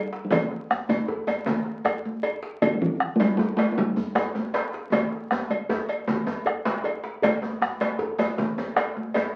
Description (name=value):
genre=west african traditional, West African drum ensemble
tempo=104 BPM (dotted quarters)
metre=12/8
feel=straight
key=unclear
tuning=A4 = 440 Hz
part: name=talking drum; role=melody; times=0.0-6.8 s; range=D3 to A3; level=-27 LUFS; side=equal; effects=none
part: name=djembe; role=percussion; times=0.1-9.3 s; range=none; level=-36 LUFS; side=equal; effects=none
part: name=bombo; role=percussion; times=0.3-9.2 s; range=none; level=-30 LUFS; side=equal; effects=none
part: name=congas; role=percussion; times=0.3-9.3 s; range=none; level=-32 LUFS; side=equal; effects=none
part: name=cowbell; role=percussion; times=0.3-9.3 s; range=none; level=-30 LUFS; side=equal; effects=none
part: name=djembe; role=percussion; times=0.3-9.3 s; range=none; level=-32 LUFS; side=equal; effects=none
room=wet small room ambience, RT60 0.5 s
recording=very old 78 rpm record, vinyl crackle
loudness=-26 LUFS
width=mono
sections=0.0-7.2 A section; 7.2-9.4 B section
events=drum fill 4.9-7.2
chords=none